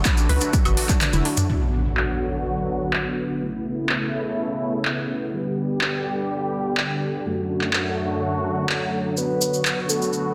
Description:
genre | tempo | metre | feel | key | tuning
progressive house | 125 BPM | 4/4 | straight | D major | A4 = 440 Hz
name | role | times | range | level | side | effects
filtered supersaw swell | sustained chords | 0.0-10.3 s | F#2 to G4 | -27 LUFS | equal | vintage 12-bit sampler grit, sidechain pumping, low-pass filter
cabasa | percussion | 0.0-1.5, 9.2-10.2 s | none | -30 LUFS | equal | none
analog pluck | arpeggios | 0.1-1.5 s | D4 to B4 | -32 LUFS | equal | chorus, sidechain pumping, tape echo
big-room dance drum kit | drums | 0.1-9.7 s | handclaps, hi-hat, toms, woodblock | -28 LUFS | equal | overdrive, low-pass filter on hats, low-pass filter on perc, low-pass filter on snare, low-pass filter on toms
electronic kick drum | drums | 0.1-1.0 s | none | -23 LUFS | equal | overdrive
saturated sub bass | bass | 0.3-1.2 s | E1 to C#2 | -24 LUFS | equal | sidechain pumping
impact | sound effects | 1.5-3.4 s | none | -29 LUFS | equal | none
soft octave-layered synth lead | melody | 9.2-10.3 s | A4 to B4 | -27 LUFS | equal | chorus, cassette tape, sidechain pumping
room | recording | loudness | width
moderate lush hall reverb, RT60 1.9 s | dense, heavily limited modern master | -23 LUFS | mono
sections
0.0-1.5 A section; 1.5-10.3 B section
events
filter sweep on synth pluck 0.0-1.5; kick drops out 1.0-1.5; drum fill 1.0-1.5; impact 1.5-3.4; filter sweep on drum 1.5-10.3; filter sweep on supersaw synth 1.5-10.3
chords
0.0 D; 1.5 Bm; 3.4 Aadd9; 5.3 G; 7.3 D/F#; 9.2 Bm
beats
0.05 0.53 1.01 | 1.49 1.97 2.45 2.93 | 3.41 3.89 4.37 4.85 | 5.33 5.81 6.29 6.77 | 7.25 7.73 8.21 8.69 | 9.17 9.65 10.13

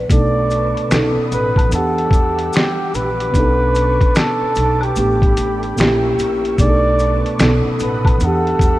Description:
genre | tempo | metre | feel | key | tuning
lo-fi hip hop | 74 BPM | 4/4 | swing 63% on 16ths | B minor | A4 = 441 Hz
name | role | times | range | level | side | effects
mellow reed electric piano | accompaniment | 0.0-8.8 s | A2 to F#5 | -19 LUFS | right 1 dB | low-pass filter
upright bass | bass | 0.0-8.8 s | A1 to E2 | -20 LUFS | equal | none
breathy flugelhorn | melody | 0.1-8.8 s | G4 to D5 | -20 LUFS | equal | low-pass filter
string machine, cellos | sustained chords | 0.1-8.8 s | G4 to E6 | -27 LUFS | equal | ensemble chorus, low-pass filter
lo-fi sampler-style drum kit | drums | 0.1-8.8 s | finger snaps, hi-hat, kick drum, snare drum | -17 LUFS | equal | none
maracas and woodblock | percussion | 0.1-8.8 s | none | -30 LUFS | left 2 dB | none
room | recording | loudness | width
moderate lush hall reverb, RT60 3.1 s | rough home demo mix | -13 LUFS | side -16 dB against mid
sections
0.1-8.8 A section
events
none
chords
0.1 Bm9; 0.9 B7; 1.7 Em9; 3.3 Bm9; 5.0 A9sus4; 5.8 A#dim7; 6.6 Bm9; 7.4 B7; 8.2 Em9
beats
| 0.09 0.91 1.72 2.53 | 3.34 4.15 4.96 5.77 | 6.58 7.39 8.20

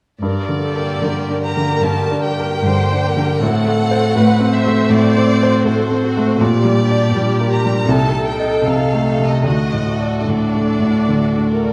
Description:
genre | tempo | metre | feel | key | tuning
classical, romantic movement for piano and orchestra | 72-84 BPM | 4/4 | rubato | G minor | A4 = 438 Hz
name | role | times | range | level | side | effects
clear baby grand piano | melody | 0.2-11.7 s | C2 to Eb5 | -18 LUFS | equal | none
rich chamber violin section | melody | 0.2-11.7 s | C5 to Bb5 | -26 LUFS | equal | none
rich studio viola section | accompaniment | 0.2-11.7 s | D4 to C5 | -25 LUFS | equal | none
warm studio cello section | bass | 0.2-11.7 s | G2 to D3 | -26 LUFS | equal | none
rich chamber violin section | second line | 0.6-11.7 s | Bb3 to A4 | -30 LUFS | equal | none
room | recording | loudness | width
moderate scoring stage reverb, RT60 1.6 s | dark, warm production | -16 LUFS | mono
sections
0.2-11.7 A section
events
none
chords
0.2 Gm; 3.4 F#dim/A; 6.4 Gm/Bb; 7.9 Adim/C; 9.4 D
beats
| 0.21 1.03 1.82 2.63 | 3.41 4.16 4.90 5.65 | 6.40 7.12 7.87 8.64 | 9.45 10.27 11.09

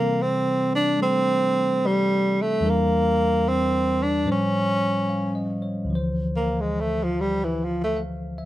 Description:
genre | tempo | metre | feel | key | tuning
jazz | 73 BPM | 4/4 | swing 66% on 8ths | D minor | A4 = 437 Hz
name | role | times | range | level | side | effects
breathy tenor saxophone | melody | 0.0-8.0 s | E3 to D4 | -22 LUFS | right 1 dB | plate reverb
bell-like tine electric piano | accompaniment | 0.0-8.5 s | D2 to E#5 | -25 LUFS | left 1 dB | none
room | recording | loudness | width
moderate studio reverb, RT60 0.5 s | none | -20 LUFS | side -15 dB against mid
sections
0.0-5.9 A section; 5.9-8.5 B section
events
tenor saxophone solo 5.9-8.5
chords
0.0 Am7; 2.6 Em7b5; 4.3 A7alt; 5.9 Dm9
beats
0.15 0.97 1.79 | 2.61 3.44 4.26 5.08 | 5.91 6.74 7.56 8.38

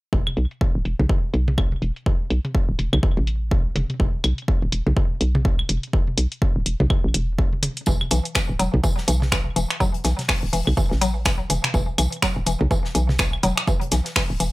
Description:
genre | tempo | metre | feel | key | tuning
minimal techno | 124 BPM | 4/4 | swing 59% on 16ths | unclear | A4 = 440 Hz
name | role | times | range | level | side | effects
hollow knocking FM bass | bass | 0.1-14.5 s | D1 to B1 | -22 LUFS | equal | sidechain pumping
electronic kick drum | drums | 0.1-14.3 s | none | -21 LUFS | equal | none
electronic toms and claves | percussion | 0.3-14.3 s | none | -28 LUFS | equal | none
techno drum kit | drums | 0.4-14.5 s | finger snaps, hi-hat | -23 LUFS | equal | overdrive, low-pass filter on hats, low-pass filter on snare
mallet-like synth pluck | riff | 7.9-14.4 s | E3 to F#3 | -26 LUFS | left 1 dB | chorus, sidechain pumping, tape echo
modern studio drum kit | drums | 7.9-14.5 s | hi-hat, snare drum, tambourine | -34 LUFS | left 1 dB | sidechain pumping on hats, high-pass filter on hats, high-pass filter on snare, sidechain pumping on perc, high-pass filter on perc, high-pass filter on room
room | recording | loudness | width
little or no reverb | dry, gritty hardware recording | -19 LUFS | side -20 dB against mid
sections
0.1-14.5 A section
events
none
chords
0.1 E5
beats
| 0.13 0.61 1.09 1.58 | 2.06 2.55 3.03 3.51 | 4.00 4.48 4.97 5.45 | 5.93 6.42 6.90 7.38 | 7.87 8.35 8.84 9.32 | 9.80 10.29 10.77 11.26 | 11.74 12.22 12.71 13.19 | 13.68 14.16

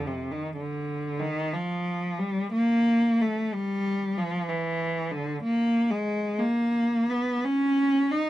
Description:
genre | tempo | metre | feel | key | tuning
classical, free, expressive piece for unaccompanied cello | 56-64 BPM | 3/4 | rubato | unclear | A4 = 441 Hz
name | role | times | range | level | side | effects
rich cello | solo | 0.0-8.3 s | B#2 to D#4 | -24 LUFS | equal | none
room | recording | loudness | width
light reverb | minimal, uncompressed stereo recording | -24 LUFS | side -14 dB against mid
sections
0.0-8.3 A section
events
none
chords
none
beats
0.55 1.52 | 2.52 3.54 4.49 | 5.43 6.40 7.45

